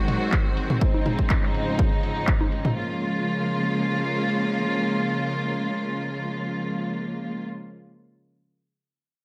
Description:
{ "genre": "progressive house", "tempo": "123 BPM", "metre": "4/4", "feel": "straight", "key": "Bb minor", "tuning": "A4 = 440 Hz", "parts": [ { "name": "rich symphonic string section", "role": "sustained chords", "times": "0.0-7.4 s", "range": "Ab2 to Gb4", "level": "-27 LUFS", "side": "equal", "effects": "sidechain pumping" }, { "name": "house drum kit", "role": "drums", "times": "0.1-2.6 s", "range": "handclaps, hi-hat", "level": "-33 LUFS", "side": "equal", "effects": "low-pass filter on hats, studio reverb, low-pass filter on snare, low-pass filter on perc" }, { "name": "electronic toms and congas", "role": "percussion", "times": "0.1-2.7 s", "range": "none", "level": "-29 LUFS", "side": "equal", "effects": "sidechain pumping on snare, studio reverb, sidechain pumping on perc, sidechain pumping on toms" }, { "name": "electronic kick drum", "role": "drums", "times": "0.3-2.4 s", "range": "none", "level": "-25 LUFS", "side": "equal", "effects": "studio reverb" } ], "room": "light reverb", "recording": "none", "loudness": "-25 LUFS", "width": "mono", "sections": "0.0-2.8 A section; 2.8-6.7 B section", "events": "none", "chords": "0.0 Ab7; 0.8 Dbmaj9/Ab; 2.8 Bbm7" }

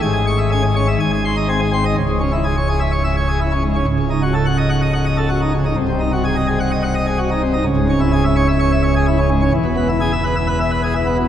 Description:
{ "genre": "classical, organ toccata", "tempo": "127 BPM", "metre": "4/4", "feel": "straight", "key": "C# minor", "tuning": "A4 = 440 Hz", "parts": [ { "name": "pipe organ, plenum", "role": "solo", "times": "0.0-11.3 s", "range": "B#0 to C#6", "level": "-15 LUFS", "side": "equal", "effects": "none" } ], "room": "wet cathedral reverb, RT60 4.2 s", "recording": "nothing above 10.8 kHz", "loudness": "-15 LUFS", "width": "side -10 dB against mid", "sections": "0.0-2.0 A section; 2.0-11.3 B section", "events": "none", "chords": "0.0 C#m/G#; 1.0 G#; 2.0 C#m; 3.9 D#m7b5/C#; 5.8 G#7/B#; 7.7 C#m; 9.5 E" }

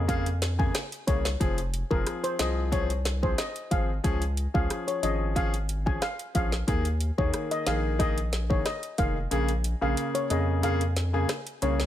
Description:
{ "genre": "dancehall", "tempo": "91 BPM", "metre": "4/4", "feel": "straight", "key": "unclear", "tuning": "A4 = 440 Hz", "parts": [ { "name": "warm concert grand piano", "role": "accompaniment", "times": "0.0-11.8 s", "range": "Db3 to Ab4", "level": "-31 LUFS", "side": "left 1 dB", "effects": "none" }, { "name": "saturated sub bass", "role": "bass", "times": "0.0-11.9 s", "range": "F1 to F2", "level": "-28 LUFS", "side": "equal", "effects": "none" }, { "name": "steel pan", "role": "melody", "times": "0.1-11.7 s", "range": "Bb4 to Ab5", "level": "-32 LUFS", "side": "left 2 dB", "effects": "tape echo" }, { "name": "afro-pop drum kit", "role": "drums", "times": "0.1-11.9 s", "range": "hi-hat, kick drum, rim click, snare drum", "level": "-29 LUFS", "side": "equal", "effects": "none" } ], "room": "small room reverb", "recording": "none", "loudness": "-25 LUFS", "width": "side -12 dB against mid", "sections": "0.0-11.9 A section", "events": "kick muted 9.3-11.9", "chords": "0.0 Bbm7; 1.4 Fm; 4.0 Db; 6.7 Ebsus4; 9.3 Bbm7" }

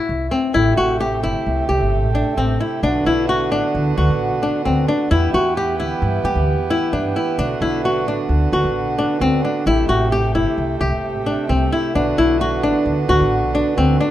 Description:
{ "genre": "contemporary instrumental, chamber music in an uneven meter", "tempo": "132 BPM", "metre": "5/4", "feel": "straight", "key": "A dorian", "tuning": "A4 = 440 Hz", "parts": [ { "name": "flamenco guitar", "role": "arpeggios", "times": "0.0-14.1 s", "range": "C4 to G4", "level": "-19 LUFS", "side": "left 2 dB", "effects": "none" }, { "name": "upright bass", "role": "bass", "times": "0.1-14.0 s", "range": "G1 to G2", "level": "-21 LUFS", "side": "equal", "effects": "none" }, { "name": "pedal harmonium", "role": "sustained chords", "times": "0.5-14.1 s", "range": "C3 to G4", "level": "-23 LUFS", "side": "right 5 dB", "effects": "none" } ], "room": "light reverb", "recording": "close, detailed microphones, lossy compression artefacts", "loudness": "-16 LUFS", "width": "side -12 dB against mid", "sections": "0.5-14.1 A section", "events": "none", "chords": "0.0 Am (rootless); 0.5 Am7; 2.8 Bm; 5.1 Em; 7.4 Bm; 9.7 Am7; 11.9 Bm" }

